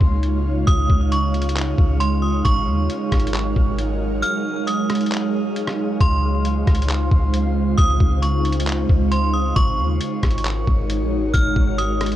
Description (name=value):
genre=hip hop, atmospheric cloud-rap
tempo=135 BPM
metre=4/4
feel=half-time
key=Db major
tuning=A4 = 442 Hz
part: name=metallic FM bell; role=melody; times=0.0-12.2 s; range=C6 to F6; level=-26 LUFS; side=right 1 dB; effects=chorus, tremolo, ping-pong delay
part: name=ethereal airy pad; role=sustained chords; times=0.0-12.2 s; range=Db3 to F5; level=-23 LUFS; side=right 2 dB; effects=ensemble chorus, built-in reverb, sidechain pumping
part: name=soft 808-style bass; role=bass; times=0.0-12.2 s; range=Ab1 to Eb2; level=-21 LUFS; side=equal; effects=none
part: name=trip hop sampler-style drum kit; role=drums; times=0.0-12.2 s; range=handclaps, hi-hat, kick drum, rim click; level=-20 LUFS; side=equal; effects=none
part: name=wind-like tuned noise texture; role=texture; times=0.0-12.2 s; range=Ab3 to F5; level=-34 LUFS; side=left 1 dB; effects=built-in reverb
room=light reverb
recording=worn, warbling old tape, cassette tape, warbly pitch drift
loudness=-17 LUFS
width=side -13 dB against mid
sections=0.0-12.2 A section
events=kick muted 4.2-6.0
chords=0.0 Db; 2.5 Ab7sus4; 6.0 Dbmaj7; 9.6 Ab7sus4